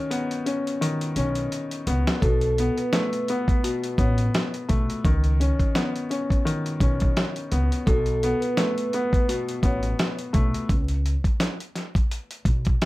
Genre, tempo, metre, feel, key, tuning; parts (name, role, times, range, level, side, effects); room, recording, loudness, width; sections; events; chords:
hip hop, boom-bap hip-hop; 85 BPM; 4/4; swing 57% on 16ths; A4 = 439 Hz
warm grand piano; accompaniment; 0.0-10.7 s; B2 to C#4; -26 LUFS; left 2 dB; high-pass filter, low-pass filter
dusty soul sampler-style drum kit; drums; 0.1-12.9 s; hi-hat, kick drum, snare drum; -24 LUFS; equal
upright bass; bass; 1.2-12.7 s; A1 to C#2; -24 LUFS; equal
vibraphone with soft mallets; melody; 2.2-9.8 s; A4 to C#5; -28 LUFS; right 1 dB; high-pass filter, low-pass filter, tape echo
light reverb; vinyl crackle; -21 LUFS; side -18 dB against mid
0.0-2.2 A section; 2.2-12.9 B section
drum fill 0.0-2.2
0.0 C#sus2; 2.2 Asus2; 5.0 C#sus2; 7.9 Asus2; 10.7 Bsus2